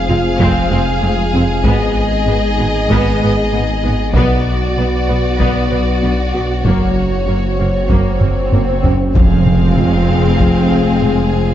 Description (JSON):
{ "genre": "cinematic, hybrid orchestral and electronic film score", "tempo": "96 BPM", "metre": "4/4", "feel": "straight", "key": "F phrygian", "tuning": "A4 = 441 Hz", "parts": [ { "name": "rich symphonic violin section", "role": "melody", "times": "0.0-11.5 s", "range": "Db5 to F5", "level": "-24 LUFS", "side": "left 2 dB", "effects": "none" }, { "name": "rich symphonic violin section", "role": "second line", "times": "0.0-11.5 s", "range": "F#4 to Ab4", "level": "-23 LUFS", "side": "left 2 dB", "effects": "none" }, { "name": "dark analog pad", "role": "sustained chords", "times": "0.0-11.5 s", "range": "F#3 to Eb5", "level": "-22 LUFS", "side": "left 1 dB", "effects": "wide subtle chorus" }, { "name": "dark detuned saw bass", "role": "bass", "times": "0.0-11.5 s", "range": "F1 to B1", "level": "-20 LUFS", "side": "equal", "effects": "none" }, { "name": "rich symphonic viola section", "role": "accompaniment", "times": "0.1-11.5 s", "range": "Bb3 to C4", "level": "-24 LUFS", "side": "equal", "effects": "none" }, { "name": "harp-like synth pluck", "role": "arpeggios", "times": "0.1-11.5 s", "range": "F3 to B4", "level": "-22 LUFS", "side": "right 2 dB", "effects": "chorus, tape echo" }, { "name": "rich symphonic cello section", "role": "bass", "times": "0.1-11.5 s", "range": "F2 to B2", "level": "-21 LUFS", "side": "right 2 dB", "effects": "none" }, { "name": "rich symphonic double bass section", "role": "bass", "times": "0.1-11.5 s", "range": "F1 to B1", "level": "-19 LUFS", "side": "right 2 dB", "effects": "none" }, { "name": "taiko ensemble", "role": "drums", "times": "0.4-11.3 s", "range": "none", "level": "-18 LUFS", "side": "equal", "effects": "none" }, { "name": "swell and impact", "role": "sound effects", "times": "7.5-11.5 s", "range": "none", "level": "-22 LUFS", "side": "equal", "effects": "none" }, { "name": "mellow French horn section", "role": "sustained chords", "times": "9.2-11.5 s", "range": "C4 to Ab4", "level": "-23 LUFS", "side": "left 9 dB", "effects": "none" } ], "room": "moderate scoring stage reverb, RT60 1.9 s", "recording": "dark, warm production, nothing above 7.8 kHz", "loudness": "-12 LUFS", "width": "side -11 dB against mid", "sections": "0.0-9.2 A section; 9.2-11.5 A section", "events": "swell 7.5-9.2; drum fill 8.2-9.2; impact 9.2-11.5", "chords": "0.0 Fm; 1.7 Abm; 4.2 Bm; 6.7 Gb; 9.2 Fm", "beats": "0.40 1.03 | 1.65 2.28 2.90 3.53 | 4.15 4.78 5.40 6.03 | 6.65 7.28 7.90 8.53 | 9.15 9.78 10.40 11.03" }